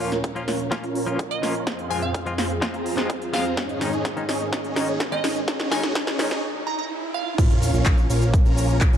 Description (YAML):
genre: EDM, festival progressive house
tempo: 126 BPM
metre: 4/4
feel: straight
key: Bb minor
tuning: A4 = 440 Hz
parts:
  - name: direct-recorded clean electric guitar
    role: accompaniment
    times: 0.0-6.3 s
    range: Eb3 to F4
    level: -32 LUFS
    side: left 3 dB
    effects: tremolo, sidechain pumping, tape echo
  - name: lush unison pad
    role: sustained chords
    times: 0.0-9.0 s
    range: Eb2 to Bb4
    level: -32 LUFS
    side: equal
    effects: chorus, sidechain pumping
  - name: supersaw chords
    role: riff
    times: 0.0-9.0 s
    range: C4 to Bb5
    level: -28 LUFS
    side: right 1 dB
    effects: phaser, cassette tape, sidechain pumping, low-pass filter, tape echo
  - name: big-room dance drum kit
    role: drums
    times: 0.0-9.0 s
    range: crash cymbal, handclaps, hi-hat, shaker, snare drum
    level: -28 LUFS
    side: equal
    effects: none
  - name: riser and sub drop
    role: sound effects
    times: 0.0-9.0 s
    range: none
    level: -34 LUFS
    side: right 1 dB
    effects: none
  - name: electronic kick drum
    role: drums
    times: 0.2-8.9 s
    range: none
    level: -21 LUFS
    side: equal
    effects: high-pass filter on kick, high-pass filter on room
  - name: glassy wavetable pluck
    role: melody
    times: 1.3-7.4 s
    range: Eb5 to Bb5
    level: -32 LUFS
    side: right 2 dB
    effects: chorus, tape echo
  - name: fat analog bass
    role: bass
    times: 7.4-9.0 s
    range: Bb1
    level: -22 LUFS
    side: equal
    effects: sidechain pumping
room: light reverb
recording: dark, warm production, high-pass filter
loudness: -21 LUFS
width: side -9 dB against mid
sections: 0.0-7.4 A section; 7.4-9.0 B section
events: build-up 0.0-7.4; drum fill 0.0-6.4; riser 0.0-7.4; filter sweep on supersaw synth 0.0-7.4; filter sweep on analog synth pad 0.0-7.4; break 6.4-7.4; drop 7.4-9.0; impact 7.4-9.0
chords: 0.0 Bbm; 1.7 Fm; 3.6 Absus4; 5.5 Ebm7; 7.4 Bbm